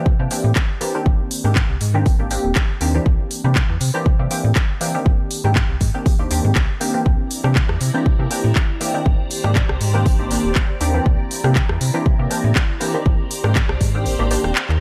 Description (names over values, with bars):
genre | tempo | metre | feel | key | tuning
filtered disco house | 120 BPM | 4/4 | swing 54% on 16ths | C mixolydian | A4 = 440 Hz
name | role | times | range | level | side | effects
funky polysynth comp | accompaniment | 0.0-14.5 s | Eb3 to G4 | -25 LUFS | equal | chorus, phaser, sidechain pumping, low-pass filter
slap-like FM bass | bass | 0.1-14.8 s | Eb1 to C3 | -22 LUFS | equal | sidechain pumping, low-pass filter
electronic kick drum | drums | 0.1-13.9 s | none | -20 LUFS | equal | none
house drum kit | drums | 0.3-14.8 s | handclaps, hi-hat, rim click | -27 LUFS | equal | sidechain pumping on hats
phased string machine | sustained chords | 7.3-14.8 s | E4 to Bb5 | -32 LUFS | equal | ensemble chorus, phaser, vintage 12-bit sampler grit, sidechain pumping, low-pass filter
room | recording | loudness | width
digital ambience | none | -18 LUFS | mono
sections
0.0-14.8 A section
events
filter sweep 0.0-14.8; kick drops out 14.1-14.8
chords
0.0 C9; 1.1 Abmaj9#11; 3.1 C9; 5.1 Abmaj9#11; 7.1 C9; 9.1 Abmaj9#11; 11.1 C9; 13.1 Abmaj9#11